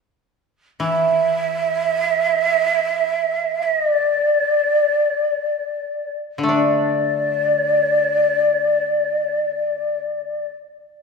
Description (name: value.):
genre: japanese traditional, Japanese chamber music.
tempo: free time.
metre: none.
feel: none.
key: unclear.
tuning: A4 = 439 Hz.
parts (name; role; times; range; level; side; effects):
breathy mellow shakuhachi; melody; 0.8-10.5 s; D5 to E5; -18 LUFS; equal; none.
koto; accompaniment; 0.8-10.5 s; D3 to D4; -22 LUFS; equal; none.
room: wet scoring stage reverb, RT60 1.8 s.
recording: recorded in a church or concert hall.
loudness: -17 LUFS.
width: side -4 dB against mid.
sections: 0.0-6.5 A section; 6.5-11.0 B section.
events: slowing down 0.0-6.5.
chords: none.